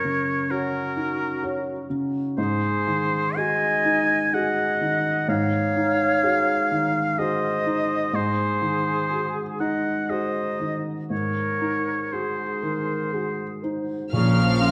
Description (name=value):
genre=cinematic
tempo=61 BPM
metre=3/4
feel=uneven beats, rubato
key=unclear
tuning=A4 = 439 Hz
part: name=clear oboe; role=second line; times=0.0-14.7 s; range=Bb4 to Ab5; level=-27 LUFS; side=equal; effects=none
part: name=silver concert flute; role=second line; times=0.0-14.7 s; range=Gb4 to Db6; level=-32 LUFS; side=equal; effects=none
part: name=felt-muted upright piano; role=accompaniment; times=0.0-14.7 s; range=Gb2 to Db5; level=-28 LUFS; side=equal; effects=none
part: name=dark clarinet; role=second line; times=12.1-14.1 s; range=Ab4 to C5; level=-36 LUFS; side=equal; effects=none
part: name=clear symphonic violin section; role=melody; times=14.1-14.7 s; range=F6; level=-29 LUFS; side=equal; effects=none
part: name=warm symphonic violin section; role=second line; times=14.1-14.7 s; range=F5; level=-32 LUFS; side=equal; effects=none
part: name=rich symphonic viola section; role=accompaniment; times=14.1-14.7 s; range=Db3 to Bb4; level=-32 LUFS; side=equal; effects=none
part: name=mellow French horn section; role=sustained chords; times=14.1-14.7 s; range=Bb3 to Db4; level=-29 LUFS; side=equal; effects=none
part: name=clear symphonic cello section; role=bass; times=14.1-14.7 s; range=F3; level=-29 LUFS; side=equal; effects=none
part: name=rich symphonic double bass section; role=bass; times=14.1-14.7 s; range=Bb1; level=-28 LUFS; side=equal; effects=none
part: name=timpani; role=percussion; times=14.1-14.7 s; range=Bb2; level=-28 LUFS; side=equal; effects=none
room=moderate scoring stage reverb, RT60 1.6 s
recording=none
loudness=-24 LUFS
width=mono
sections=0.0-14.1 A section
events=none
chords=0.0 Ebm7/Gb; 2.4 Ab7; 14.1 Bbm